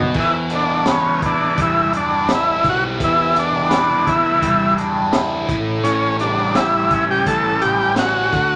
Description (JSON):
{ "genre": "psychedelic rock", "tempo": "84 BPM", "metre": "4/4", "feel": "straight", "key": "E dorian", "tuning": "A4 = 440 Hz", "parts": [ { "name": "fuzz guitar", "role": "riff", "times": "0.0-8.6 s", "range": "A2 to B4", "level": "-22 LUFS", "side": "equal", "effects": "distortion, phaser" }, { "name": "fuzz fingered electric bass", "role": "bass", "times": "0.0-8.6 s", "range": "A1 to E2", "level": "-29 LUFS", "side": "equal", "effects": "overdrive" }, { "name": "tanpura", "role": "drone", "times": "0.0-6.8 s", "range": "E2 to E3", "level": "-37 LUFS", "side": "equal", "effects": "none" }, { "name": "crunchy breakbeat drum kit", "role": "drums", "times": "0.1-8.5 s", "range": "crash cymbal, hi-hat, kick drum, snare drum", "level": "-25 LUFS", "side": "equal", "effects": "none" }, { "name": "combo organ", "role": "melody", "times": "0.2-8.6 s", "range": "C#4 to A4", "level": "-20 LUFS", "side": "equal", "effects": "none" } ], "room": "moderate studio ambience, RT60 0.4 s", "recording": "none", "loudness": "-17 LUFS", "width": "mono", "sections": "0.2-8.6 A section", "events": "drum fill 0.0", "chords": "0.2 Em7; 5.5 A7" }